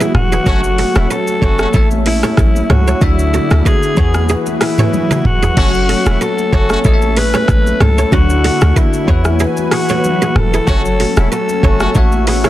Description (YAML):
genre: afrobeats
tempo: 94 BPM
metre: 4/4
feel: swing 55% on 16ths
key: F# minor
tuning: A4 = 440 Hz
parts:
  - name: breathy alto saxophone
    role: melody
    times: 0.0-12.5 s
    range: E4 to B4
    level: -18 LUFS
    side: equal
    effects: none
  - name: bell-like tine electric piano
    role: accompaniment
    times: 0.0-12.5 s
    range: D3 to E5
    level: -20 LUFS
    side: left 6 dB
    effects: wide subtle chorus
  - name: warm analog pad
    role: sustained chords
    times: 0.0-12.5 s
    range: D3 to G#5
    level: -24 LUFS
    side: equal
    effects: chorus, sidechain pumping
  - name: kora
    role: riff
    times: 0.0-12.5 s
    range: C#4 to C#5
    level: -21 LUFS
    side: right 4 dB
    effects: digital delay
  - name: afro-pop drum kit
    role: drums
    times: 0.0-12.5 s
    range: crash cymbal, hi-hat, kick drum, rim click, shaker, toms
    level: -16 LUFS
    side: equal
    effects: vintage 12-bit sampler grit, soft clipping on snare
  - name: congas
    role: percussion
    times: 0.0-12.5 s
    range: none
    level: -23 LUFS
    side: right 2 dB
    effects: none
  - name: short 808-style bass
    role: bass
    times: 0.1-12.4 s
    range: E1 to E2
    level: -14 LUFS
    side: equal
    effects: none
  - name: clear horn section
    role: second line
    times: 0.5-1.7, 5.6-6.8, 10.7-11.9 s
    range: A3 to F#4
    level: -23 LUFS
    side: left 1 dB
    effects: none
room: small room ambience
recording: dense, heavily limited modern master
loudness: -10 LUFS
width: side -14 dB against mid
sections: 0.0-12.5 A section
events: drum fill 4.9-5.6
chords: 0.5 F#m; 1.7 A; 3.0 Dadd9; 4.0 Eadd9; 5.6 F#m; 6.8 A; 8.1 Dadd9; 9.1 Eadd9; 10.7 F#m; 12.0 A